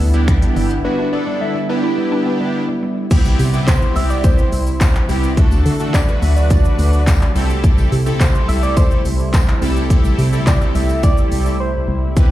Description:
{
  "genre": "dance-pop",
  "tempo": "106 BPM",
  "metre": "4/4",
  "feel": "straight",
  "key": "A dorian",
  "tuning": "A4 = 439 Hz",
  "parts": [
    { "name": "soft struck synth lead", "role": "melody", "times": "0.0-12.0 s", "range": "B4 to E5", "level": "-25 LUFS", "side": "equal", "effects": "chorus, ping-pong delay" },
    { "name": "lush unison pad", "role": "sustained chords", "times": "0.0-12.3 s", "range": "C3 to F#4", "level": "-24 LUFS", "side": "equal", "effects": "chorus, sidechain pumping" },
    { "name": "mallet-like synth pluck", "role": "arpeggios", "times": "0.0-3.0 s", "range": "G3 to E4", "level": "-27 LUFS", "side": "left 2 dB", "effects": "chorus, sidechain pumping, ping-pong delay" },
    { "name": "organ-like FM bass", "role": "bass", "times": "0.0-12.2 s", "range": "G1 to D3", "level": "-17 LUFS", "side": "equal", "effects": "sidechain pumping" },
    { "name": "pop drum kit", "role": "drums", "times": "0.0-12.3 s", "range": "crash cymbal, finger snaps, handclaps, hi-hat, kick drum, shaker", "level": "-15 LUFS", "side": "equal", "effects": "none" },
    { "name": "big bright polysynth", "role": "accompaniment", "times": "0.1-12.3 s", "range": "A3 to B4", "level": "-23 LUFS", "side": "right 1 dB", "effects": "lush chorus, sidechain pumping" },
    { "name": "tambourine", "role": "percussion", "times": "3.3-11.6 s", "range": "none", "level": "-38 LUFS", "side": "left 8 dB", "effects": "none" }
  ],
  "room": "little or no reverb",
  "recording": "played on a big sound system in a bare room, large studio reverb",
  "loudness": "-13 LUFS",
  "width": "side -14 dB against mid",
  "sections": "0.0-3.1 A section; 3.1-12.3 B section",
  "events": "break 0.8-3.1, 11.6-12.2",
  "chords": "0.0 G6; 3.1 Cmaj7; 5.4 D; 7.4 Am7/C"
}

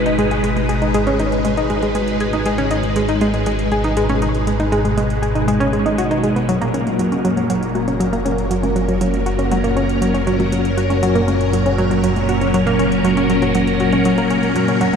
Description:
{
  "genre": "ambient, sequencer-driven space music",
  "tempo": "119 BPM",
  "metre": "4/4",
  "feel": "straight",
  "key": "unclear",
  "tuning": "A4 = 441 Hz",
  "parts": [
    { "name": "phased string machine", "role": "sustained chords", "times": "0.0-15.0 s", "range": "A#2 to B4", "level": "-19 LUFS", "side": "left 1 dB", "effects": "ensemble chorus, phaser" },
    { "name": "analog pluck", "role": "riff", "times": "0.0-15.0 s", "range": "F#3 to G#4", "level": "-18 LUFS", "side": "equal", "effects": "chorus, tape echo" },
    { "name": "analog drone", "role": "bass", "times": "0.0-15.0 s", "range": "F#1 to G#1", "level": "-23 LUFS", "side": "equal", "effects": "chorus" },
    { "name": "electronic hi-hat and congas", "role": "percussion", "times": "0.1-15.0 s", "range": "none", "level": "-31 LUFS", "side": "right 2 dB", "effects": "tape echo" }
  ],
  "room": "wet huge ambient reverb, RT60 8.1 s",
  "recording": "dark, warm production",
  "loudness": "-15 LUFS",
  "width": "side -7 dB against mid",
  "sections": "0.0-15.0 A section",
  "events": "none",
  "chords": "0.0 G#m; 6.5 F#"
}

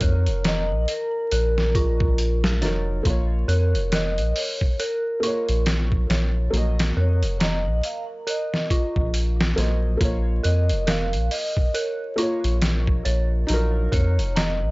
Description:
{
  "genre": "trip hop",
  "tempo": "69 BPM",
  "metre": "4/4",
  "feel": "swing 59% on 16ths",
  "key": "Bb minor",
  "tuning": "A4 = 437 Hz",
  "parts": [
    { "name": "vibraphone with soft mallets", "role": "melody", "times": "0.0-14.7 s", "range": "Bb4 to F5", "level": "-29 LUFS", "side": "equal", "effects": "dub echo" },
    { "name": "felt-muted upright piano", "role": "accompaniment", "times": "0.0-14.7 s", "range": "Gb3 to Eb5", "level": "-30 LUFS", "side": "equal", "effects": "harmonic tremolo, tape echo" },
    { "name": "dark detuned synth bell", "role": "arpeggios", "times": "0.0-14.7 s", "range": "F4 to Bb5", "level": "-31 LUFS", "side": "right 2 dB", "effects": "chorus, tape echo" },
    { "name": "soft dub sub bass", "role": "bass", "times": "0.0-14.7 s", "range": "F1 to F2", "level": "-22 LUFS", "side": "equal", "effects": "tube saturation" },
    { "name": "trip hop sampler-style drum kit", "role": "drums", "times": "0.0-14.6 s", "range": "hi-hat, kick drum, snare drum", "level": "-24 LUFS", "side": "equal", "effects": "small room ambience" }
  ],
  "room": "little or no reverb",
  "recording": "dry, gritty hardware recording, vinyl crackle, nothing above 7.6 kHz",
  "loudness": "-20 LUFS",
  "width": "side -23 dB against mid",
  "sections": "0.0-14.7 A section",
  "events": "none",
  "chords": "0.0 Ebm; 3.1 Bbm; 6.5 Cdim; 10.0 Bbm; 13.5 Ebm"
}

